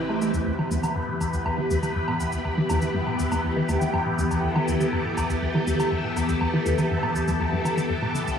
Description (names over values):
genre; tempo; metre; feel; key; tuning
ambient, sequencer-driven space music; 121 BPM; 4/4; straight; E minor; A4 = 440 Hz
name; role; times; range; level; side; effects
phased string machine; sustained chords; 0.0-8.4 s; E3 to B4; -25 LUFS; left 1 dB; ensemble chorus, phaser, shimmer reverb
resonant blip pluck; riff; 0.0-8.3 s; D2 to A3; -26 LUFS; equal; chorus, analog delay
woodblock and cabasa; percussion; 0.1-8.4 s; none; -33 LUFS; right 1 dB; overdrive, analog delay
room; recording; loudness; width
wet concert hall reverb, RT60 2.4 s; none; -22 LUFS; side -7 dB against mid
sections
0.3-8.4 A section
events
filter sweep on synth arpeggio sound 0.3-8.4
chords
0.3 Em